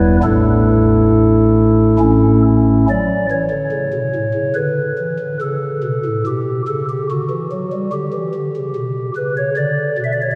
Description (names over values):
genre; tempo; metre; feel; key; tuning
classical, chorale-style piece for pipe organ; 67-74 BPM; 3/4; rubato; D major; A4 = 440 Hz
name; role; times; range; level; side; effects
pipe organ, stopped flute; solo; 0.0-10.4 s; E1 to E5; -16 LUFS; equal; none
room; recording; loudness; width
wet church reverb, RT60 3.4 s; recorded in a church or concert hall; -16 LUFS; mono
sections
0.0-2.9 A section; 2.9-10.4 B section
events
none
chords
0.2 Asus4; 2.0 A; 2.9 D; 5.4 A9; 7.1 D; 7.9 G; 9.6 Bm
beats
| 0.23 1.11 2.01 | 2.89 3.75 4.59 | 5.43 6.27 7.10 | 7.92 8.74 9.56